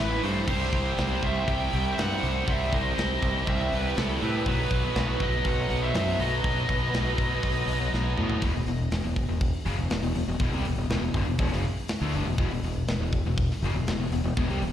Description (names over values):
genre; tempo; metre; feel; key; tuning
heavy metal; 121 BPM; 4/4; straight; E harmonic minor; A4 = 440 Hz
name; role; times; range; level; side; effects
high-gain lead guitar; melody; 0.0-7.9 s; A4 to G5; -31 LUFS; right 1 dB; distortion, slapback echo, digital delay
high-gain lead guitar; second line; 0.0-7.9 s; E4 to E5; -37 LUFS; right 4 dB; distortion
high-gain distorted guitar; riff; 0.0-14.7 s; E2 to A3; -34 LUFS; left 8 dB; distortion
raw garage guitar; riff; 0.0-14.7 s; E2 to C4; -33 LUFS; equal; overdrive, slapback echo
scooped high-gain guitar; riff; 0.0-8.4 s; B3 to E4; -37 LUFS; right 13 dB; distortion
growling fingered electric bass; bass; 0.0-14.7 s; E1 to A2; -28 LUFS; equal; overdrive
tight metal drum kit; drums; 0.2-14.7 s; crash cymbal, hi-hat, kick drum, snare drum, toms; -31 LUFS; equal; none
room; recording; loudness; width
light reverb; live gig heard through the venue's PA, recital hall reverb; -24 LUFS; side -10 dB against mid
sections
0.0-8.4 A section; 8.4-14.7 B section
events
drum fill 7.9-8.4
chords
0.5 C; 4.5 B; 8.4 Em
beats
| 0.48 0.98 1.48 1.98 | 2.48 2.97 3.47 3.96 | 4.46 4.96 5.45 5.95 | 6.44 6.94 7.43 7.93 | 8.42 8.92 9.41 9.91 | 10.40 10.90 11.39 11.89 | 12.38 12.88 13.37 13.87 | 14.37